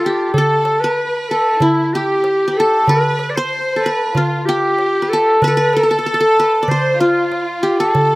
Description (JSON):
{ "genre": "Turkish makam ensemble", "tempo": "95 BPM", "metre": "4/4", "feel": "straight", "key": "A makam ussak", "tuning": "A4 = 440 Hz", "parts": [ { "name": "qanun", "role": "melody", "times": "0.0-8.2 s", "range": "E4 to D5", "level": "-16 LUFS", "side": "equal", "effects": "slapback echo" }, { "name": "clear clarinet", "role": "second line", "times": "0.0-8.2 s", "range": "E4 to D5", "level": "-18 LUFS", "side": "left 1 dB", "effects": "none" }, { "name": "rich studio violin section", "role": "second line", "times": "0.0-8.2 s", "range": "E4 to C5", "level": "-24 LUFS", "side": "right 2 dB", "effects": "none" }, { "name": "darbuka", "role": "percussion", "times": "0.3-8.1 s", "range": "none", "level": "-20 LUFS", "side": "right 1 dB", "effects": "none" } ], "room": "little or no reverb", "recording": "recorded outdoors, with no room sound", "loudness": "-13 LUFS", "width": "side -21 dB against mid", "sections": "0.3-8.2 A section", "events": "none", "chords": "none" }